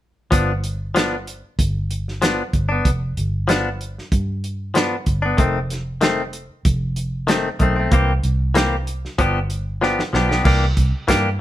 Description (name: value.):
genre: straight-eighth soul blues.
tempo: 95 BPM.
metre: 4/4.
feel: straight.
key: unclear.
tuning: A4 = 440 Hz.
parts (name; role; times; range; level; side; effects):
direct-recorded clean electric guitar; stabs; 0.3-11.3 s; Eb3 to G4; -20 LUFS; left 2 dB; none.
vintage muted fingered electric bass; bass; 0.3-11.4 s; F1 to G2; -22 LUFS; equal; none.
warm soul drum kit; drums; 0.3-11.2 s; crash cymbal, hi-hat, kick drum, snare drum; -21 LUFS; right 1 dB; none.
room: moderate studio reverb, RT60 0.8 s.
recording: band playing live in one room.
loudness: -18 LUFS.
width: side -13 dB against mid.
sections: 0.3-10.4 A section.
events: drum fill 9.8-10.4.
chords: 0.3 G7; 5.4 F7; 7.9 C7; 9.2 G7; 10.4 C9.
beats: | 0.32 0.95 1.58 2.22 | 2.85 3.48 4.12 4.75 | 5.38 6.02 6.65 7.29 | 7.92 8.55 9.18 9.82 | 10.45 11.08.